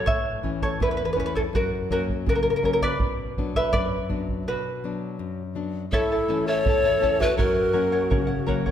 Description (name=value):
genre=andean folk, Andean ensemble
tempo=82 BPM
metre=2/4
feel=straight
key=unclear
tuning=A4 = 439 Hz
part: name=charango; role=accompaniment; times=0.0-8.7 s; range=E4 to A5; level=-26 LUFS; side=equal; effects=none
part: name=nylon-string guitar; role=accompaniment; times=0.0-8.7 s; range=E2 to D4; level=-29 LUFS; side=left 4 dB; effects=none
part: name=bombo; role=percussion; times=0.1-8.7 s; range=none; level=-28 LUFS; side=right 2 dB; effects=none
part: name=breathy mellow pan flute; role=melody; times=5.9-8.4 s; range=A4 to C#5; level=-22 LUFS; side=left 3 dB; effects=none
part: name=breathy bright large quena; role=second line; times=5.9-8.4 s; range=E4 to A#4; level=-30 LUFS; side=right 6 dB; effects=tape echo
room=moderate concert hall reverb, RT60 1.8 s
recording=none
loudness=-22 LUFS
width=side -9 dB against mid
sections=0.1-5.9 A section; 5.9-8.7 B section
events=charango solo 0.1-5.9; break 4.5-5.9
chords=0.1 A; 1.5 F#; 3.0 Bm; 5.9 A; 7.4 F#